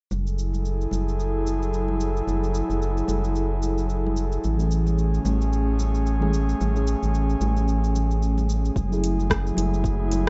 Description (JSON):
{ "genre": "sunset chillout", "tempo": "111 BPM", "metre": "4/4", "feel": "swing 57% on 16ths", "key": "F# minor", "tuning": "A4 = 437 Hz", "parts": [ { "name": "airy breathy pad", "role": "sustained chords", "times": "0.3-10.3 s", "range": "F#3 to A4", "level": "-30 LUFS", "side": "equal", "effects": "chorus" }, { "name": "round analog bass", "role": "bass", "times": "0.1-10.3 s", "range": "F#1 to A1", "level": "-26 LUFS", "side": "equal", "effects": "tube saturation" }, { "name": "smooth R&B drum kit", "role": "drums", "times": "0.1-10.2 s", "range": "hi-hat, rim click, shaker", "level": "-33 LUFS", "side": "equal", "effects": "overdrive" }, { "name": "congas", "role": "percussion", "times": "0.1-10.2 s", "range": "none", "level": "-39 LUFS", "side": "equal", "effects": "none" }, { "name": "mellow FM electric piano", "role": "accompaniment", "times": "4.6-10.3 s", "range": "E3 to G#4", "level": "-32 LUFS", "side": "equal", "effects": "chorus, delay" }, { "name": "electronic kick drum", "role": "drums", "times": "8.8-10.0 s", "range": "none", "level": "-28 LUFS", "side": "equal", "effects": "overdrive" } ], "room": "light reverb", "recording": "rough home demo mix, nothing above 7.8 kHz", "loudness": "-24 LUFS", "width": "mono", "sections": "0.1-8.8 A section; 8.8-10.3 B section", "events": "filter sweep on analog synth bass 0.1-8.8", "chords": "0.1 F#m9; 4.4 Amaj7; 8.8 F#m9" }